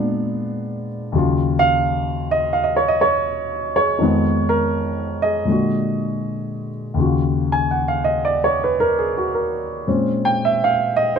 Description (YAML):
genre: solo jazz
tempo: 83 BPM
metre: 4/4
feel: swing 68% on 8ths, rubato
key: Eb minor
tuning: A4 = 444 Hz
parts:
  - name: dark grand piano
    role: solo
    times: 0.0-11.2 s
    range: Eb2 to Ab5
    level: -17 LUFS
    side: equal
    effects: none
room: light reverb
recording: close, detailed microphones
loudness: -17 LUFS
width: side -6 dB against mid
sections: 0.0-7.0 A section; 7.0-11.2 B section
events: grand piano solo 7.0-11.2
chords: 0.0 Bb7b9; 1.1 Ebm9; 4.0 Fm7b5; 5.5 Bb7b13; 7.0 Ebm9; 9.9 Bbm9